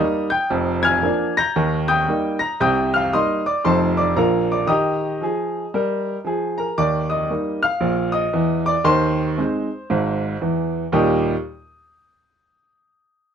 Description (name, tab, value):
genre	jazz, stride piano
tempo	115 BPM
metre	4/4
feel	swing 62% on 8ths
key	Eb major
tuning	A4 = 441 Hz
part	clear upright piano	solo	0.0-11.3 s	F1 to Bb6	-18 LUFS	equal	none
room	moderate studio ambience, RT60 0.5 s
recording	none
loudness	-18 LUFS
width	side -8 dB against mid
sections	0.0-6.8 A section; 6.8-10.9 B section; 10.9-13.0 C section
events	none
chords	0.0 Eb; 0.5 Bb7/F; 1.6 Eb; 2.6 Cm7; 3.6 F7; 4.2 Bb; 4.7 Eb; 8.9 Ab/Eb; 10.9 Eb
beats	| 0.51 1.03 1.55 2.08 | 2.60 3.12 3.64 4.16 | 4.68 5.21 5.73 6.25 | 6.77 7.29 7.82 8.34 | 8.86 9.38 9.90 10.43 | 10.95